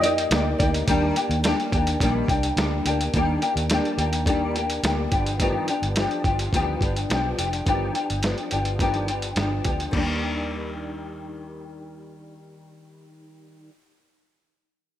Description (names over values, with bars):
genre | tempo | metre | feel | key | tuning
indie pop, bedroom pop | 106 BPM | 4/4 | straight | Eb major | A4 = 444 Hz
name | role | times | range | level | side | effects
warm velvety synth lead | melody | 0.0-0.6 s | Eb5 | -26 LUFS | right 1 dB | ensemble chorus, slapback echo
flamenco guitar | accompaniment | 0.0-13.7 s | G2 to D5 | -25 LUFS | left 2 dB | ensemble chorus, vibrato effect
vintage muted fingered electric bass | bass | 0.0-13.7 s | F1 to F2 | -27 LUFS | right 1 dB | none
lo-fi sampler-style drum kit | drums | 0.0-10.1 s | crash cymbal, hi-hat, kick drum, snare drum | -26 LUFS | right 1 dB | overdrive
room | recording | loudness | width
light reverb | none | -21 LUFS | side -11 dB against mid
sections
0.9-9.9 A section; 9.9-12.2 B section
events
none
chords
0.0 Ebmaj9; 0.9 Ebmaj7; 5.1 G7b13; 9.9 Ebmaj7